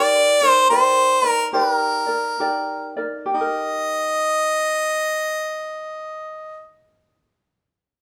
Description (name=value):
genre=Hawaiian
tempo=64-78 BPM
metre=4/4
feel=swing 62% on 8ths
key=Eb major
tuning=A4 = 440 Hz
part: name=clear harmonica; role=melody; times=0.0-6.6 s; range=Bb4 to Eb5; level=-20 LUFS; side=equal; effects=none
part: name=ukulele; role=accompaniment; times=0.0-6.9 s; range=Eb4 to D5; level=-26 LUFS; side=equal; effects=none
room=moderate large studio reverb, RT60 1.1 s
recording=band playing live in one room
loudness=-20 LUFS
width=mono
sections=0.0-3.3 A section; 3.3-7.1 B section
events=slowing down 0.0-3.3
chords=0.0 Ebmaj7; 3.3 Eb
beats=0.73 1.54 2.41 | 3.32 4.26 5.20 6.14